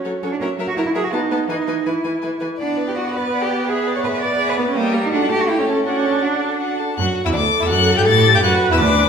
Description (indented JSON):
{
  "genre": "quick classical-period movement for string quartet",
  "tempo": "166 BPM",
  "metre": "3/4",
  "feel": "straight",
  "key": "D major",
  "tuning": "A4 = 440 Hz",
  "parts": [
    { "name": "rich violin", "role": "melody", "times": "0.0-9.1 s", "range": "C#5 to A6", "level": "-22 LUFS", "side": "left 7 dB", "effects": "none" },
    { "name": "rich cello", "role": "bass", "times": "0.0-9.1 s", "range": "D2 to D5", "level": "-20 LUFS", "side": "right 3 dB", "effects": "none" },
    { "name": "warm violin", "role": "second line", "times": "0.1-9.1 s", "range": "D4 to D5", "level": "-23 LUFS", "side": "left 2 dB", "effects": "none" },
    { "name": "rich viola", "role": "accompaniment", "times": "0.1-9.1 s", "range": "E3 to B4", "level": "-23 LUFS", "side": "right 1 dB", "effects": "none" }
  ],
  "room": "wet recital hall reverb, RT60 1.6 s",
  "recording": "recorded in a church or concert hall",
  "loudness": "-16 LUFS",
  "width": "side -6 dB against mid",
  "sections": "0.0-7.0 A section; 7.0-9.1 B section",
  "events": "none",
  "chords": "0.4 F#7; 1.1 B; 1.5 E; 2.6 Bm; 3.7 E7/B; 4.8 Eb/G; 5.1 D/A; 5.5 A7; 5.9 D; 8.1 Em7 (rootless)"
}